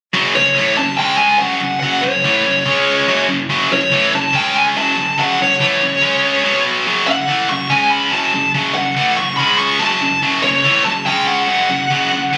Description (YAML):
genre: metal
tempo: 143 BPM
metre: 4/4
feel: straight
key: F# minor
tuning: A4 = 440 Hz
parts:
  - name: high-gain distorted guitar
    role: riff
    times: 0.1-12.4 s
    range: F#2 to C#4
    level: -18 LUFS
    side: equal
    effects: distortion
  - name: high-gain lead guitar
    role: melody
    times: 0.4-12.4 s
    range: C#5 to C#6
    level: -17 LUFS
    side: equal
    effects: distortion, digital delay
room: light reverb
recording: recorded on a phone in the room, studio reverb, compression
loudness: -15 LUFS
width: mono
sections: 0.1-12.4 A section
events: none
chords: 0.1 F#m; 1.0 C#5; 1.4 F#m; 2.7 C#5; 3.1 F#m; 4.3 C#5; 4.8 F#m; 6.0 C#5; 6.4 B5; 6.9 F#m; 7.7 C#5; 8.1 F#m; 9.4 C#5; 9.8 F#m; 11.1 C#5; 11.5 F#5